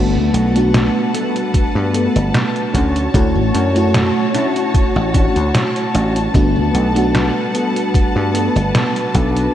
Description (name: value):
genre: vaporwave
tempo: 75 BPM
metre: 4/4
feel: swing 54% on 16ths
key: G lydian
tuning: A4 = 440 Hz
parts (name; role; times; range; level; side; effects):
- FM electric piano with soft pad layer; accompaniment; 0.0-9.2 s; A3 to C#5; -19 LUFS; equal; tremolo, analog chorus, diffuse ambient delay
- rich studio string section; sustained chords; 0.0-9.5 s; G3 to A5; -22 LUFS; left 1 dB; none
- dry thumbed slap bass; bass; 0.0-9.5 s; G1 to G2; -18 LUFS; equal; tube saturation
- mellow electric guitar; riff; 0.3-9.5 s; A3 to A4; -23 LUFS; equal; analog chorus, vintage 12-bit sampler grit, low-pass filter, diffuse ambient delay
- detuned 8-bit digital drum machine; drums; 0.3-9.5 s; hi-hat, snare drum; -21 LUFS; equal; none
- electronic kick drum; drums; 1.5-9.3 s; none; -15 LUFS; equal; none
room: wet lush hall reverb, RT60 2.7 s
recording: dreamy mix soaked in reverb, cassette tape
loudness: -13 LUFS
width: side -11 dB against mid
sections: 0.0-9.5 A section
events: none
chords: 0.0 Gmaj9; 2.7 Dmaj7; 6.3 Gmaj9